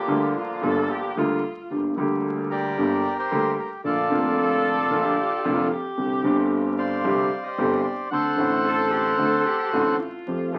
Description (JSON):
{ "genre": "tango", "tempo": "112 BPM", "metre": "4/4", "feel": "rubato", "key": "G minor", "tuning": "A4 = 439 Hz", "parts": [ { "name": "bandoneon", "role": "melody", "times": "0.0-10.0 s", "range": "D3 to F#5", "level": "-27 LUFS", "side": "equal", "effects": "none" }, { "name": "dark cello", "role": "second line", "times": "0.0-10.6 s", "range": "F4 to Bb4", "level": "-32 LUFS", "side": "equal", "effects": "none" }, { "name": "warm grand piano", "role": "accompaniment", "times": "0.1-10.6 s", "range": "F1 to G4", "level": "-26 LUFS", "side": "equal", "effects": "none" }, { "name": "bright double bass", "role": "bass", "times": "0.1-10.6 s", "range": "F1 to F2", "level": "-36 LUFS", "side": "equal", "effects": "none" } ], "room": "wet studio reverb, RT60 0.6 s", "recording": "very old 78 rpm record, vinyl crackle", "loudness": "-23 LUFS", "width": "mono", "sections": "0.0-1.7 A section; 1.7-10.6 B section", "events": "none", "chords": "0.0 Gm7; 1.7 Gm; 3.9 Bbmaj7; 6.0 Csus2; 8.1 D7" }